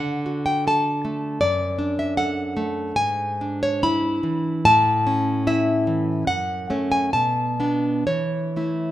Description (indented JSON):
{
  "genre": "romantic piece for solo classical guitar",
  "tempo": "61-80 BPM",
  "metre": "2/4",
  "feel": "rubato",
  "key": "A major",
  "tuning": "A4 = 437 Hz",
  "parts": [
    { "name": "nylon-string guitar", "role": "solo", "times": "0.0-8.9 s", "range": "F#2 to B5", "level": "-20 LUFS", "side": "equal", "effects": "none" }
  ],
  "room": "moderate recital hall reverb, RT60 1.8 s",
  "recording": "minimal, uncompressed stereo recording",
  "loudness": "-20 LUFS",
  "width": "side -13 dB against mid",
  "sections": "0.0-8.9 A section",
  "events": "none",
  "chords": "0.0 D; 1.4 D/F#; 3.0 E7/G#; 4.6 A; 6.3 F#m; 7.1 Bm7; 8.1 A/E"
}